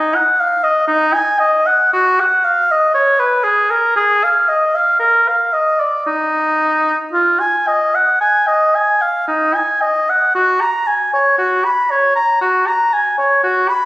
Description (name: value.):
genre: classical, baroque-style fantasia for unaccompanied oboe.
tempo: 55-60 BPM.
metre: 4/4.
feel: rubato.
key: Eb minor, F# major from 10.3 s.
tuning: A4 = 440 Hz.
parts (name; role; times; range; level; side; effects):
warm oboe; solo; 0.0-13.9 s; Eb4 to B5; -12 LUFS; equal; none.
room: wet scoring stage reverb, RT60 1.9 s.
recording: recorded on a phone in the room, studio ambience, compression.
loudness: -12 LUFS.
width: side -19 dB against mid.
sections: 0.0-10.3 A section; 10.3-13.9 A section.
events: none.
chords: none.